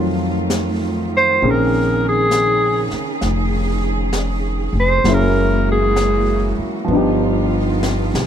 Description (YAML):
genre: jazz ballad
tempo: 66 BPM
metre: 4/4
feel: swing 67% on 8ths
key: unclear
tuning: A4 = 441 Hz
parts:
  - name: warm concert grand piano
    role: accompaniment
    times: 0.0-8.3 s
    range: Eb3 to Ab4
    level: -21 LUFS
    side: left 1 dB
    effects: none
  - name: clear studio cello section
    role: sustained chords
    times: 0.0-8.3 s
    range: Db3 to Ab4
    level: -24 LUFS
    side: right 3 dB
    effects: none
  - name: upright bass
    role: bass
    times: 0.0-8.3 s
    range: F1 to F2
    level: -20 LUFS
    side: equal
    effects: none
  - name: jazz brush drum kit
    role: drums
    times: 0.5-8.3 s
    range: brushed snare drum, hi-hat, snare drum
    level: -27 LUFS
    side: left 2 dB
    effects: none
  - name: breathy tenor saxophone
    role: melody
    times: 1.2-6.6 s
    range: Ab4 to C5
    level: -16 LUFS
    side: equal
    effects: plate reverb
room: light reverb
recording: dark, warm production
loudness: -15 LUFS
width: side -9 dB against mid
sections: 0.0-8.3 A section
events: tenor saxophone solo 0.0-8.3; drum fill 7.8-8.3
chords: 0.0 F7b9; 1.4 Bbm11; 5.1 Gb9; 6.9 G7b13